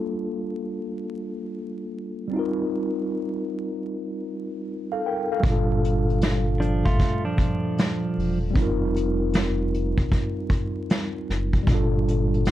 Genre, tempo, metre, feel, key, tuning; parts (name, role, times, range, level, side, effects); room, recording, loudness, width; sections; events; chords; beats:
lo-fi hip hop; 77 BPM; 4/4; swing 65% on 16ths; G minor; A4 = 440 Hz
mellow tine electric piano; accompaniment; 0.0-12.5 s; Bb2 to G5; -26 LUFS; equal; medium stereo tremolo, low-pass filter
sub bass with octave; bass; 5.4-12.5 s; E1 to A1; -25 LUFS; equal
vintage brush drum kit; drums; 5.4-12.5 s; hi-hat, kick drum, snare drum; -24 LUFS; equal
clean electric guitar; second line; 6.6-8.4 s; F3 to F4; -27 LUFS; right 2 dB; low-pass filter, tape echo
light reverb; dark, warm production, vinyl crackle; -22 LUFS; side -13 dB against mid
0.0-5.4 A section; 5.4-12.5 B section
0.0 Gm9; 2.3 F9sus4; 5.4 Gm9; 8.6 F9sus4; 11.7 Gm9
0.76 1.54 | 2.32 3.10 3.88 4.66 | 5.44 6.22 7.00 7.78 | 8.55 9.33 10.11 10.89 | 11.67 12.45